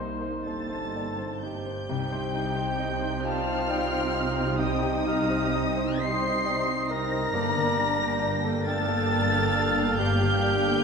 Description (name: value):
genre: cinematic, emotional film score for orchestra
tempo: 44 BPM (dotted quarters)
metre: 6/8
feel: uneven beats, rubato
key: C dorian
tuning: A4 = 442 Hz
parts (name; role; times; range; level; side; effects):
- muted symphonic violin section; melody; 0.0-10.8 s; Eb4 to C7; -32 LUFS; left 1 dB; none
- mellow cor anglais; second line; 0.0-10.8 s; C5 to A5; -34 LUFS; right 3 dB; none
- muted symphonic violin section; second line; 0.0-10.8 s; G3 to G5; -37 LUFS; left 2 dB; none
- small flute group; second line; 0.0-10.8 s; Eb4 to C6; -34 LUFS; left 4 dB; none
- clear baby grand piano; accompaniment; 0.0-10.8 s; C2 to Eb5; -34 LUFS; equal; none
- muted symphonic viola section; accompaniment; 0.0-10.8 s; Bb3 to Eb4; -36 LUFS; right 4 dB; none
- dark French horn section; sustained chords; 0.0-10.8 s; G3 to Eb4; -34 LUFS; left 2 dB; none
- concert harp; arpeggios; 0.0-10.8 s; G2 to C6; -36 LUFS; left 9 dB; none
- muted symphonic cello section; bass; 0.0-10.8 s; C2 to C3; -35 LUFS; right 4 dB; none
- muted symphonic double bass section; bass; 0.0-10.8 s; G1 to C2; -33 LUFS; right 5 dB; none
- clear clarinet; second line; 0.5-10.8 s; Eb4 to C5; -34 LUFS; equal; none
room: wet scoring stage reverb, RT60 2.0 s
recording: none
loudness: -24 LUFS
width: side -5 dB against mid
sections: 0.0-1.9 A section; 1.9-10.8 B section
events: none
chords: 0.0 Cm7; 1.9 Cm; 7.3 Gmadd9